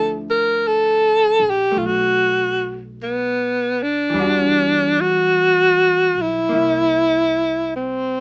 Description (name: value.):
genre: jazz ballad.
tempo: 50 BPM.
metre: 4/4.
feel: swing 68% on 8ths.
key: unclear.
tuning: A4 = 438 Hz.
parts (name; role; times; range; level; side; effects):
breathy alto saxophone; melody; 0.0-8.2 s; B3 to Bb4; -15 LUFS; equal; none.
vintage hollow-body jazz guitar; accompaniment; 0.0-8.2 s; D3 to F#4; -26 LUFS; left 1 dB; none.
upright bass; bass; 0.0-8.2 s; Bb1 to E2; -32 LUFS; equal; none.
room: light reverb.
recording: rough home demo mix, small speaker sound.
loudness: -15 LUFS.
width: side -32 dB against mid.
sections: 0.0-8.2 A section.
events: none.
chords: 0.0 Dm9; 1.8 B7(no3); 4.1 Em9; 6.5 C7.